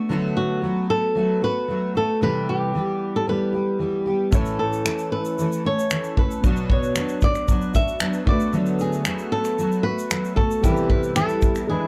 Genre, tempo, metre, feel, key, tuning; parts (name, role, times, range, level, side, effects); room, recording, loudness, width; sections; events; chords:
acoustic pop; 114 BPM; 4/4; straight; A4 = 440 Hz
fingerpicked steel-string acoustic guitar; accompaniment; 0.0-11.9 s; A2 to A4; -26 LUFS; equal; double-tracked
flamenco guitar; melody; 0.4-11.9 s; F#4 to E5; -27 LUFS; equal
warm concert grand piano; accompaniment; 4.3-11.9 s; G3 to C#5; -34 LUFS; equal
loose indie drum kit; drums; 4.3-11.7 s; finger snaps, kick drum, shaker; -24 LUFS; equal
light reverb; -22 LUFS; mono
0.0-11.9 A section
0.0 D6; 2.2 Cmaj7; 4.3 A; 6.4 Bm; 8.3 D6; 10.6 Cmaj7